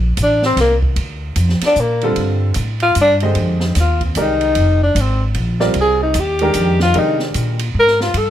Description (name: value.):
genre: modal jazz.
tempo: 151 BPM.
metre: 3/4.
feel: swing 64% on 8ths.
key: unclear.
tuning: A4 = 441 Hz.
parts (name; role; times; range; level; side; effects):
upright bass; bass; 0.0-8.3 s; F1 to C3; -17 LUFS; equal; none.
breathy tenor saxophone; melody; 0.2-8.3 s; Bb3 to Bb4; -15 LUFS; left 1 dB; plate reverb.
open jazz drum kit; drums; 0.2-8.3 s; hi-hat, kick drum, ride cymbal, snare drum; -25 LUFS; right 3 dB; none.
clear baby grand piano; accompaniment; 2.0-7.6 s; D3 to Eb5; -20 LUFS; right 1 dB; none.
room: light reverb.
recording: none.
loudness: -13 LUFS.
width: side -11 dB against mid.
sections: 0.0-8.3 A section.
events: tenor saxophone solo 0.0-8.3.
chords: 0.0 Gm11; 3.4 Fm11.